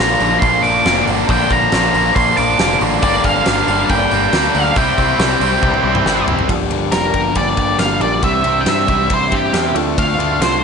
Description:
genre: quiet-loud alternative rock.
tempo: 138 BPM.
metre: 4/4.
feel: straight.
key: G dorian.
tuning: A4 = 439 Hz.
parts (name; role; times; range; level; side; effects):
octave-fuzz lead guitar; melody; 0.0-10.6 s; G4 to D6; -17 LUFS; right 1 dB; distortion, analog delay.
cranked stack guitar; riff; 0.0-10.6 s; G2 to E4; -20 LUFS; left 14 dB; overdrive.
tight distorted guitar; riff; 0.0-6.5 s; G2 to E4; -19 LUFS; right 14 dB; distortion.
growling picked electric bass; bass; 0.0-10.6 s; F1 to G2; -21 LUFS; equal; overdrive.
huge arena drum kit; drums; 0.2-10.5 s; hi-hat, kick drum, ride cymbal, snare drum, toms; -20 LUFS; equal; none.
fingerpicked steel-string acoustic guitar; arpeggios; 6.5-10.6 s; G2 to G4; -22 LUFS; right 11 dB; analog delay.
room: light reverb, studio reverb.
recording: nothing above 10.3 kHz.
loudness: -12 LUFS.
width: side -6 dB against mid.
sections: 0.0-6.5 A section; 6.5-10.6 B section.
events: drum fill 5.6-6.5; lead electric guitar solo 6.5-10.6.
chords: 0.0 Bb; 3.0 Gm7; 4.8 C; 6.5 Gm7; 8.2 Cadd9; 9.8 Dm7.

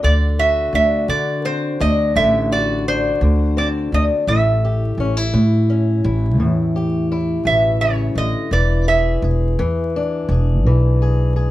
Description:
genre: acoustic country blues, solo or duo.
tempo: 56 BPM (dotted quarters).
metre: 12/8.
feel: straight.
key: unclear.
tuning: A4 = 440 Hz.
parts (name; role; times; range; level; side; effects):
metal-body resonator slide guitar; melody; 0.0-9.2 s; C5 to E5; -19 LUFS; right 2 dB; plate reverb.
fingerpicked old ladder-braced acoustic guitar; accompaniment; 0.0-11.5 s; A2 to G#4; -21 LUFS; left 3 dB; none.
upright bass; bass; 0.0-11.5 s; E1 to D3; -18 LUFS; equal; none.
room: light reverb.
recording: vinyl crackle.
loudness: -15 LUFS.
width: side -15 dB against mid.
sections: 0.0-11.5 A section.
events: none.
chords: 0.0 D7; 4.3 A7; 8.5 E7.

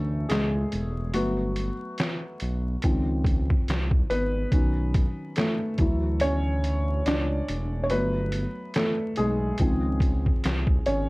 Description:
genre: lo-fi hip hop.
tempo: 71 BPM.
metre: 4/4.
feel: swing 58% on 16ths.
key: unclear.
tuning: A4 = 440 Hz.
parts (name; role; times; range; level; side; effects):
felt-muted upright piano; accompaniment; 0.0-11.1 s; D#3 to D5; -28 LUFS; equal; cassette tape, plate reverb.
smooth synth bass; bass; 0.0-11.1 s; E1 to D2; -27 LUFS; equal; none.
trip hop sampler-style drum kit; drums; 0.3-11.1 s; handclaps, hi-hat, kick drum, snare drum; -25 LUFS; equal; none.
room: light reverb.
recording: vinyl crackle.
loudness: -23 LUFS.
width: side -23 dB against mid.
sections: 0.0-11.1 A section.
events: felt piano solo 0.0-11.1.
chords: 0.0 Dmaj9; 1.1 Gmaj9; 2.8 C#maj9; 4.5 Badd9; 5.8 Dmaj9; 7.9 Gmaj9; 9.6 C#maj9.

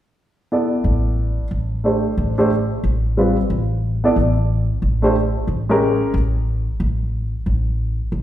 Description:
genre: jazz.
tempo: 181 BPM.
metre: 4/4.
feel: swing 62% on 8ths.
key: unclear.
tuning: A4 = 440 Hz.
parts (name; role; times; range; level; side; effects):
warm baby grand piano; accompaniment; 0.5-6.1 s; G3 to D5; -19 LUFS; equal; none.
upright bass; bass; 0.8-8.2 s; A1; -19 LUFS; equal; none.
room: wet recital hall reverb, RT60 1.4 s.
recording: recorded in a church or concert hall.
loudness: -17 LUFS.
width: side -12 dB against mid.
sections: 0.5-8.2 A section.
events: none.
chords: 0.5 D9sus4; 5.8 Bbm7.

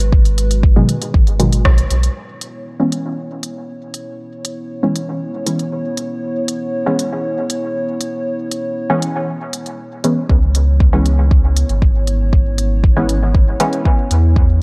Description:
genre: dub techno.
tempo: 118 BPM.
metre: 4/4.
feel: straight.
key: C# minor.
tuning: A4 = 436 Hz.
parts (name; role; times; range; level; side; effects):
dark analog pad; sustained chords; 0.0-14.6 s; G#3 to D#5; -27 LUFS; equal; chorus, sidechain pumping.
pure sine sub bass; bass; 0.0-2.1, 10.3-14.6 s; G#1 to E2; -17 LUFS; equal; sidechain pumping.
deep house drum kit; drums; 0.0-14.2 s; hi-hat, rim click; -25 LUFS; equal; none.
electronic kick drum; drums; 0.1-1.8, 10.3-14.5 s; none; -15 LUFS; equal; none.
filtered dub chord stab; stabs; 0.8-13.8 s; B2 to C#4; -22 LUFS; equal; chorus, phaser, sidechain pumping, dub echo.
room: light reverb.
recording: dark, warm production.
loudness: -16 LUFS.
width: mono.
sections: 0.0-2.2 A section; 2.2-10.3 B section; 10.3-14.6 A section.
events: filter sweep on synth stab 0.0-2.2; band accent 1.7.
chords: 0.0 G#m7; 2.2 C#m7.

